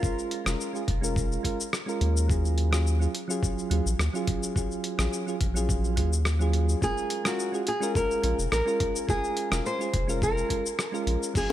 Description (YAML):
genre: sunset chillout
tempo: 106 BPM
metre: 4/4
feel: straight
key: unclear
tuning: A4 = 436 Hz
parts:
  - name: nylon-string guitar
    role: melody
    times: 0.0-1.4, 6.8-11.5 s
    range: F4 to C5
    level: -30 LUFS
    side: equal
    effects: ping-pong delay, shimmer reverb
  - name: soft electric-piano-like synth keys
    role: accompaniment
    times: 0.0-11.5 s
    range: Gb3 to Bb4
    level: -31 LUFS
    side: right 2 dB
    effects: chorus, auto-pan, low-pass filter, ping-pong delay, shimmer reverb
  - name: dusty soul sampler-style drum kit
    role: drums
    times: 0.0-11.5 s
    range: crash cymbal, hi-hat, rim click, shaker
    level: -32 LUFS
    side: left 1 dB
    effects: overdrive, small room ambience
  - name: electronic kick drum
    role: drums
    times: 0.0-11.5 s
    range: none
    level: -29 LUFS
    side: equal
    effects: overdrive, small room ambience
  - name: round analog bass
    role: bass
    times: 0.5-11.2 s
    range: F1 to Eb2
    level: -25 LUFS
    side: equal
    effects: none
  - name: wind-like tuned noise texture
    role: texture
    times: 11.4-11.5 s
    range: none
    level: barely audible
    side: none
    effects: none
room: light reverb, digital ambience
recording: none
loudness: -24 LUFS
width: side -12 dB against mid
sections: 0.0-11.5 A section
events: filter sweep on synth keys 0.0-11.5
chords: 0.0 Bbm7; 2.3 Ebm11; 6.8 Bbm7